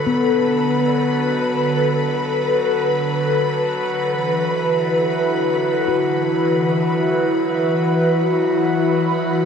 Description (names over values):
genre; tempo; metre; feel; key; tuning
ambient; free time; none; none; unclear; A4 = 440 Hz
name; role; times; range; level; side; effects
airy breathy pad; sustained chords; 0.0-9.5 s; D3 to B5; -18 LUFS; equal; chorus, phaser
handpan; arpeggios; 0.0-8.8 s; F#3 to F#4; -24 LUFS; left 3 dB; ping-pong delay
hand-pumped harmonium; drone; 0.0-9.5 s; F#3 to F#4; -27 LUFS; right 1 dB; none
rich symphonic violin section; texture; 0.0-9.5 s; B4 to B5; -26 LUFS; left 2 dB; none
room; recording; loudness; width
wet concert hall reverb, RT60 2.1 s; cassette tape; -16 LUFS; side -7 dB against mid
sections
0.0-9.5 A section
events
none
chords
0.0 D6; 4.0 D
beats
free time